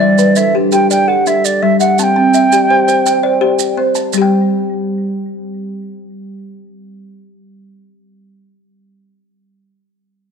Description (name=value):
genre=southern african traditional, mbira-style interlocking cycle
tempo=111 BPM (dotted quarters)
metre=12/8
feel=straight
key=unclear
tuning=A4 = 440 Hz
part: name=wooden flute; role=melody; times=0.0-3.8 s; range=D5 to A5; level=-13 LUFS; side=right 2 dB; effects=none
part: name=kalimba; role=arpeggios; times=0.0-8.7 s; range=G3 to A5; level=-16 LUFS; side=left 10 dB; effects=none
part: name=marimba with soft mallets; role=arpeggios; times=0.0-8.7 s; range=G3 to G5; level=-17 LUFS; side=right 10 dB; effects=tape echo
part: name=maracas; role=percussion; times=0.2-4.3 s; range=none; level=-22 LUFS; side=right 14 dB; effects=none
room=moderate echo chamber reverb, RT60 1.8 s, studio ambience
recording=1960s-style stereo with parts hard left and right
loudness=-10 LUFS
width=side -6 dB against mid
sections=0.0-4.1 A section; 4.1-8.4 B section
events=none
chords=0.0 G; 2.0 C; 4.1 N.C.